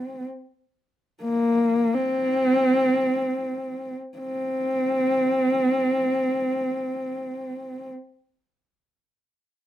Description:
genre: mongolian traditional, Mongolian folk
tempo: free time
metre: none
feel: none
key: unclear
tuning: A4 = 440 Hz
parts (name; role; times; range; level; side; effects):
- dark horsehead fiddle; solo; 0.0-7.9 s; Bb3 to C4; -22 LUFS; equal; none
room: light reverb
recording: minimal, uncompressed stereo recording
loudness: -21 LUFS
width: side -12 dB against mid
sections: 0.0-4.2 A section; 4.2-8.7 B section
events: slowing down 0.0-4.2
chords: none

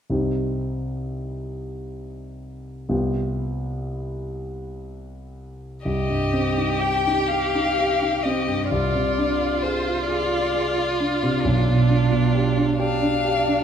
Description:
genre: classical, slow romantic movement for piano quartet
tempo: 37-45 BPM (dotted quarters)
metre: 6/8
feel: rubato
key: C minor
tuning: A4 = 440 Hz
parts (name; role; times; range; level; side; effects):
- warm concert grand piano; accompaniment; 0.1-13.6 s; B1 to Ab4; -23 LUFS; right 1 dB; none
- rich violin; melody; 5.9-13.6 s; C5 to G5; -25 LUFS; left 6 dB; none
- clear violin; second line; 5.9-13.6 s; D4 to G4; -28 LUFS; left 1 dB; none
- rich cello; second line; 5.9-13.6 s; D4 to G4; -28 LUFS; right 7 dB; none
room: moderate scoring stage reverb, RT60 1.9 s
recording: minimal, uncompressed stereo recording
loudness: -20 LUFS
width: side -8 dB against mid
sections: 0.1-5.9 A section; 5.9-13.6 B section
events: none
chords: 0.1 Cm; 2.9 G7/C; 5.9 Cm; 8.7 Dm7b5/C; 11.4 G7/B

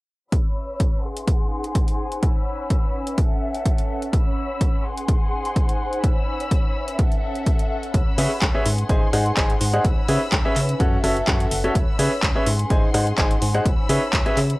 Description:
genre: piano house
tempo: 126 BPM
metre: 4/4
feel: swing 54% on 16ths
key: C# minor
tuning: A4 = 440 Hz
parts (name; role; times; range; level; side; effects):
- dark studio string section; sustained chords; 0.3-14.6 s; G#4 to E6; -30 LUFS; left 2 dB; sidechain pumping, low-pass filter, cassette tape
- electronic kick drum; drums; 0.3-14.2 s; none; -21 LUFS; equal; cassette tape
- garage drum kit; drums; 0.3-14.6 s; handclaps, hi-hat, rim click; -27 LUFS; equal; cassette tape
- warbly tape-like pad; texture; 0.6-14.6 s; C#4 to G#5; -31 LUFS; equal; chorus, built-in reverb, sidechain pumping, cassette tape
- organ-like FM bass; bass; 7.9-14.6 s; F#1 to C#3; -23 LUFS; equal; sidechain pumping
- clear upright piano; riff; 8.2-14.3 s; C#4 to G#5; -23 LUFS; equal; sidechain pumping, cassette tape, analog delay
room: light reverb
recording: home recording on cassette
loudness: -19 LUFS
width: side -21 dB against mid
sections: 0.3-14.6 A section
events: filter sweep on string section 0.3-14.6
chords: 0.3 C#m7; 1.0 G#7; 2.2 C#m7; 3.2 F#m7; 4.1 C#m7; 4.8 G#7; 6.0 C#m7; 7.0 F#m7; 7.9 C#m7; 8.7 G#7; 9.8 C#m7; 10.8 F#m7; 11.8 C#m7; 12.5 G#7; 13.7 C#m7

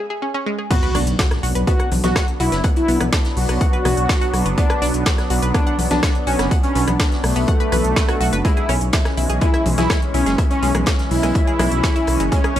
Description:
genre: melodic techno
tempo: 124 BPM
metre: 4/4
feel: straight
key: B dorian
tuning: A4 = 439 Hz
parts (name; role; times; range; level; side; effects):
- analog pluck; arpeggios; 0.0-12.6 s; G#3 to F#6; -26 LUFS; equal; chorus, phaser, sidechain pumping, tape echo
- wide unison lead; melody; 0.7-12.6 s; A3 to F#4; -23 LUFS; left 1 dB; lush chorus, cassette tape, sidechain pumping, tape echo
- lush unison pad; sustained chords; 0.7-12.6 s; E3 to D4; -26 LUFS; equal; chorus, phaser, sidechain pumping
- deep house drum kit; drums; 0.7-12.6 s; congas, crash cymbal, hi-hat, rim click, snare drum; -24 LUFS; equal; high-pass filter on hats, studio reverb, high-pass filter on toms, high-pass filter on perc, high-pass filter on cymbals, high-pass filter on snare
- electronic kick drum; drums; 0.7-12.4 s; none; -19 LUFS; equal; studio reverb
- vintage drum kit; drums; 0.7-12.6 s; hi-hat, snare drum; -33 LUFS; left 2 dB; sidechain pumping on hats, high-pass filter on hats, studio reverb, high-pass filter on snare, high-pass filter on room
- impact; sound effects; 0.7-2.6 s; none; -29 LUFS; equal; none
- swelling detuned saw bass; bass; 0.9-12.6 s; F#1 to B1; -20 LUFS; equal; tube saturation, sidechain pumping
room: little or no reverb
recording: dry, gritty hardware recording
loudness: -16 LUFS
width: side -11 dB against mid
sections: 0.7-12.6 A section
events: break 0.0-0.7; drop 0.7-12.6; impact 0.7-2.6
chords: 0.0 C#5; 0.7 Bm; 8.4 C#m

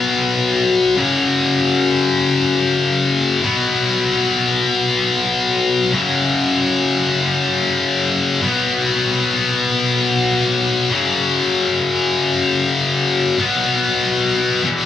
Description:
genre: rock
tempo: free time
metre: none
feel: none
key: unclear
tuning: A4 = 439 Hz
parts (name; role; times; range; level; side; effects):
- heavy high-gain guitar; solo; 0.0-14.9 s; E2 to B3; -14 LUFS; left 3 dB; distortion, cassette tape
room: light reverb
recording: home recording on cassette, small room ambience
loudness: -14 LUFS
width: side -10 dB against mid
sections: 0.0-14.9 A section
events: none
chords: 0.0 B5; 1.0 F#5; 3.5 B5; 5.9 F#5; 8.4 B5; 10.9 F#5; 13.4 B5

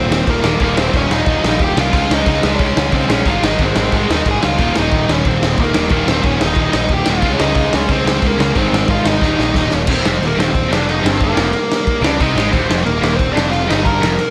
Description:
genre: punk rock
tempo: 181 BPM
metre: 4/4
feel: straight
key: Eb major from 9.9 s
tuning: A4 = 440 Hz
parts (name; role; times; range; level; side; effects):
- bluesy overdriven lead guitar; melody; 0.0-14.3 s; Ab3 to Bb5; -21 LUFS; equal; distortion
- overdriven electric guitar; riff; 0.0-14.2 s; Eb2 to Db4; -25 LUFS; equal; none
- overdriven electric guitar; riff; 0.0-14.2 s; Eb2 to Db4; -25 LUFS; equal; none
- fuzz picked electric bass; bass; 0.0-14.2 s; Eb1 to Eb2; -23 LUFS; equal; overdrive
- raw garage drum kit; drums; 0.1-14.3 s; crash cymbal, kick drum, snare drum; -20 LUFS; equal; none
- crunchy overdriven guitar; riff; 4.6-14.2 s; Eb2 to Db4; -27 LUFS; equal; none
room: light reverb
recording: none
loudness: -15 LUFS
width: mono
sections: 0.0-9.9 A section; 9.9-14.3 B section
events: drum fill 9.2-9.9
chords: 0.0 Eb5; 1.9 Db; 3.2 Ab; 4.6 Eb5; 7.2 Db5; 8.6 Ab; 9.2 Eb5; 9.9 Eb

